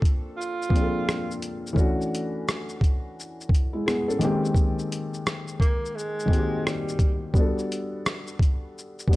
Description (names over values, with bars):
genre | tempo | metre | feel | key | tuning
lo-fi hip hop | 86 BPM | 4/4 | swing 64% on 16ths | unclear | A4 = 441 Hz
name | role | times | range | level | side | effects
breathy tenor saxophone | melody | 0.0-1.4, 5.6-7.2 s | G3 to F4 | -32 LUFS | right 2 dB | low-pass filter
felt-muted upright piano | accompaniment | 0.0-9.2 s | Eb3 to A4 | -28 LUFS | left 1 dB | cassette tape, low-pass filter
boom bap sampler-style drum kit | drums | 0.0-9.2 s | hi-hat, kick drum, rim click, shaker | -23 LUFS | equal | none
room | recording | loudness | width
small room ambience | dry, gritty hardware recording, cassette tape | -23 LUFS | side -18 dB against mid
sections
0.0-7.3 A section; 7.3-9.2 A section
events
none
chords
0.0 Bbmaj9; 1.8 Dmaj9; 4.2 Abmaj9; 7.3 Gmaj9